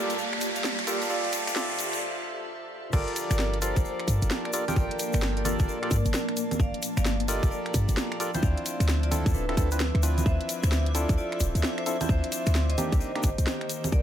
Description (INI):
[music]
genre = UK garage, two-step garage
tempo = 131 BPM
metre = 4/4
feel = swing 64% on 16ths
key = G minor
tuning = A4 = 440 Hz
[part]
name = vibraphone with medium hard mallets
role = melody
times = 0.0-14.0 s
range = D4 to F5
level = -35 LUFS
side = right 1 dB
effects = digital delay
[part]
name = airy breathy pad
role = sustained chords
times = 0.0-14.0 s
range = D3 to A5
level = -40 LUFS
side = equal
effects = chorus, sidechain pumping
[part]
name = percussive organ stab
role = stabs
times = 0.0-13.3 s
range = Bb3 to G5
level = -32 LUFS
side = equal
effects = chorus, digital delay
[part]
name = riser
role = sound effects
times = 0.0-2.0 s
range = none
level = -31 LUFS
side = equal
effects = none
[part]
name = granular cloud pad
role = texture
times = 0.0-14.0 s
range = Eb3 to D6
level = -37 LUFS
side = equal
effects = built-in reverb, sidechain pumping
[part]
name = garage drum kit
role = drums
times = 0.1-13.9 s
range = congas, crash cymbal, finger snaps, hi-hat, snare drum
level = -32 LUFS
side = right 1 dB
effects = overdrive, small room ambience
[part]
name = egg shaker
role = percussion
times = 0.1-14.0 s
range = none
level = -37 LUFS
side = left 8 dB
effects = none
[part]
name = short 808-style bass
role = bass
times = 2.9-14.0 s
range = D1 to G2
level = -26 LUFS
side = equal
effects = none
[part]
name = electronic kick drum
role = drums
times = 2.9-14.0 s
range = none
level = -27 LUFS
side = equal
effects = overdrive, small room ambience
[sound]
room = light reverb, digital ambience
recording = high-pass filter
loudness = -24 LUFS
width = side -10 dB against mid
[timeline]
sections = 0.0-2.9 A section; 2.9-14.0 B section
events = build-up 0.0-2.9; riser 0.0-2.0; filter sweep on analog synth pad 0.0-2.9; break 2.0-2.9; drop 2.9-14.0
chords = 0.0 Gm9; 1.1 Dm9; 2.9 Gm9; 8.4 Dm9; 12.8 Cm9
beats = 0.18 0.64 | 1.10 1.56 2.02 2.47 | 2.93 3.39 3.85 4.31 | 4.76 5.22 5.68 6.14 | 6.60 7.05 7.51 7.97 | 8.43 8.89 9.34 9.80 | 10.26 10.72 11.18 11.63 | 12.09 12.55 13.01 13.47 | 13.92